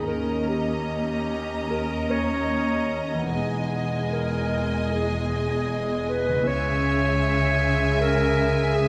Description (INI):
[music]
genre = classical, slow romantic movement for symphony orchestra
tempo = 72-81 BPM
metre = 4/4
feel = rubato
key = unclear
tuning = A4 = 440 Hz
[part]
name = warm studio violin section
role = melody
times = 0.0-8.9 s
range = G#5 to A#5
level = -38 LUFS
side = equal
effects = none
[part]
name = mellow clarinet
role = second line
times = 0.0-8.9 s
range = G4 to C#5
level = -29 LUFS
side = equal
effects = none
[part]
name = rich symphonic violin section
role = second line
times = 0.0-8.9 s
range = D#5 to E5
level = -34 LUFS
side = equal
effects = none
[part]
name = rich studio viola section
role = accompaniment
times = 0.0-8.9 s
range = G#3 to C#4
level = -34 LUFS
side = equal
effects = none
[part]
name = concert harp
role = arpeggios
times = 0.0-8.9 s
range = C#3 to A#4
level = -35 LUFS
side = equal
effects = none
[part]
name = dark studio double bass section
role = bass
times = 0.0-8.9 s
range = E1 to D#2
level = -32 LUFS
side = equal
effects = none
[part]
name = warm studio cello section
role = bass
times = 0.0-8.9 s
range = D#2 to C#3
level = -31 LUFS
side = equal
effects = none
[sound]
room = wet scoring stage reverb, RT60 1.7 s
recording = none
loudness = -24 LUFS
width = mono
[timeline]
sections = 0.0-8.9 A section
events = none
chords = 0.1 D#7; 3.3 Emaj7; 6.5 C#m